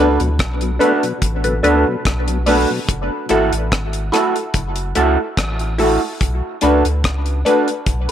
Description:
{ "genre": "dub reggae", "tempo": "72 BPM", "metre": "4/4", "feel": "straight", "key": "unclear", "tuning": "A4 = 439 Hz", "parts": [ { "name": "electric guitar through a small old amp", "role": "accompaniment", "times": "0.0-7.7 s", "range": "A3 to F#4", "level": "-20 LUFS", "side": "right 4 dB", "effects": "tape echo" }, { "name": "mellow tonewheel organ", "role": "accompaniment", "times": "0.0-2.8 s", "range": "B2 to D4", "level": "-24 LUFS", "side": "left 3 dB", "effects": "chorus vibrato, slow rotary speaker, tape echo" }, { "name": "filtered dub chord stab", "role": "stabs", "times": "0.0-8.1 s", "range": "D4 to B4", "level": "-20 LUFS", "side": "left 2 dB", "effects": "phaser, tape echo" }, { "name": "warm sub bass", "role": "bass", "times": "0.0-8.1 s", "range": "F#1 to D2", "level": "-20 LUFS", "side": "equal", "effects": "none" }, { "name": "deep reggae drum kit", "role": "drums", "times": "0.2-8.1 s", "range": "hi-hat, kick drum, rim click", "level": "-21 LUFS", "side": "left 1 dB", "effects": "none" } ], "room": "light reverb, small room ambience", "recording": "none", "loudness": "-15 LUFS", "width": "side -10 dB against mid", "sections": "0.0-8.1 A section", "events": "none", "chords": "0.0 Bm7; 2.9 F#m7; 6.2 Bm7" }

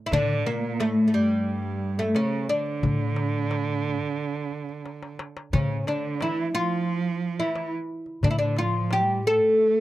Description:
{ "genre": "Arabic maqam ensemble", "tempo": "89 BPM", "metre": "4/4", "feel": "straight", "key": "unclear", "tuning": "A4 = 438 Hz", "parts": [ { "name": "oud", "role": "melody", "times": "0.1-9.8 s", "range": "G3 to A4", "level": "-24 LUFS", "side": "left 1 dB", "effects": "none" }, { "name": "rich cello", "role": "second line", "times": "0.1-9.8 s", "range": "G2 to A3", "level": "-29 LUFS", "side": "right 5 dB", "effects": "none" }, { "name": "upright bass", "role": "bass", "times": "0.1-9.4 s", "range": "A2", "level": "-27 LUFS", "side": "equal", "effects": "none" }, { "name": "darbuka", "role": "percussion", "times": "0.1-9.1 s", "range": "none", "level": "-30 LUFS", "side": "left 3 dB", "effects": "none" } ], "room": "little or no reverb", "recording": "dry, close 1970s-style studio recording", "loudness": "-23 LUFS", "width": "side -15 dB against mid", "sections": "0.0-9.8 A section", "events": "drum fill 4.9-5.5", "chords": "none" }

